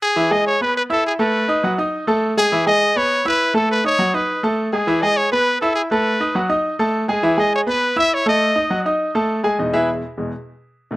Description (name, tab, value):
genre	latin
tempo	204 BPM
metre	4/4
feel	straight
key	E major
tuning	A4 = 439 Hz
part	bright trumpet	melody	0.0-8.8 s	G#4 to E5	-18 LUFS	equal	none
part	bright grand piano	accompaniment	0.2-11.0 s	E2 to E6	-18 LUFS	equal	slapback echo
room	little or no reverb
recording	recorded outdoors, with no room sound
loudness	-16 LUFS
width	side -18 dB against mid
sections	0.2-9.6 A section; 9.6-11.0 B section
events	grand piano solo 9.6-11.0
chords	0.2 E; 1.3 B7; 2.5 E; 3.7 B7; 4.9 E; 6.0 B7; 7.2 E; 8.4 F#m69; 9.6 E